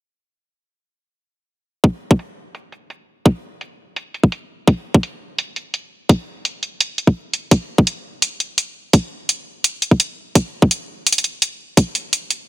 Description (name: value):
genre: half-time drum and bass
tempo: 169 BPM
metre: 4/4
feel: half-time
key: none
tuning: none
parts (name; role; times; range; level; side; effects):
- electronic hi-hat; drums; 1.8-12.4 s; none; -18 LUFS; right 1 dB; low-pass filter on hats
- electronic kick drum; drums; 1.8-11.8 s; none; -11 LUFS; equal; high-pass filter on kick
room: little or no reverb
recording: none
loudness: -17 LUFS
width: side -16 dB against mid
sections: 1.8-12.5 A section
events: none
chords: none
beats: | 1.83 2.19 2.54 2.90 | 3.25 3.61 3.96 4.32 | 4.67 5.03 5.38 5.74 | 6.09 6.45 6.80 7.16 | 7.51 7.87 8.22 8.58 | 8.94 9.29 9.64 10.00 | 10.36 10.71 11.06 11.42 | 11.78 12.13